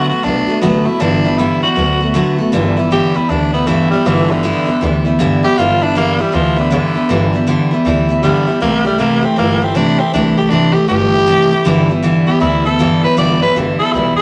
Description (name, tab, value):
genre	rockabilly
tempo	158 BPM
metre	4/4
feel	swing 63% on 8ths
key	G major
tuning	A4 = 440 Hz
part	raspy tenor saxophone	melody	0.0-14.2 s	D3 to D5	-18 LUFS	equal	none
part	picked steel-string acoustic guitar	accompaniment	0.0-14.2 s	G2 to G4	-16 LUFS	equal	none
part	upright bass	bass	0.1-14.2 s	G1 to D2	-22 LUFS	equal	none
room	wet studio reverb, RT60 0.8 s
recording	none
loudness	-14 LUFS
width	mono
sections	0.0-2.5 A section; 2.5-14.2 B section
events	tenor saxophone solo 2.5-14.2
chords	0.0 D6; 1.0 G6; 1.8 D6; 2.5 G6; 8.6 C6; 11.7 G6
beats	0.25 0.63 | 1.01 1.39 1.77 2.15 | 2.53 2.91 3.29 3.67 | 4.05 4.43 4.82 5.20 | 5.58 5.96 6.34 6.72 | 7.10 7.48 7.86 8.24 | 8.62 9.00 9.38 9.76 | 10.14 10.52 10.90 11.28 | 11.66 12.04 12.42 12.80 | 13.18 13.56 13.94